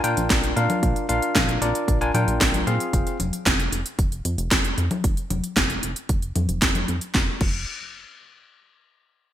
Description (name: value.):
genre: italo disco.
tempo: 114 BPM.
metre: 4/4.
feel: straight.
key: unclear.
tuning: A4 = 440 Hz.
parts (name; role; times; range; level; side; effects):
bell-like tine electric piano; stabs; 0.0-3.2 s; C4 to Ab5; -24 LUFS; left 1 dB; ping-pong delay.
chorused synth bass; bass; 0.0-7.7 s; F1 to Bb2; -26 LUFS; equal; none.
house drum kit; drums; 0.0-7.5 s; congas, crash cymbal, hi-hat, snare drum; -24 LUFS; equal; studio ambience, gated reverb.
electronic kick drum; drums; 0.3-7.5 s; none; -24 LUFS; equal; studio ambience.
room: light reverb.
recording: bright 1980s-style digital production.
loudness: -20 LUFS.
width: side -11 dB against mid.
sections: 0.0-7.1 A section; 7.1-9.2 B section.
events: none.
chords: 0.0 Bb; 2.9 N.C..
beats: 0.30 | 0.83 1.35 1.88 2.41 | 2.93 3.46 3.99 4.51 | 5.04 5.57 6.09 6.62 | 7.14.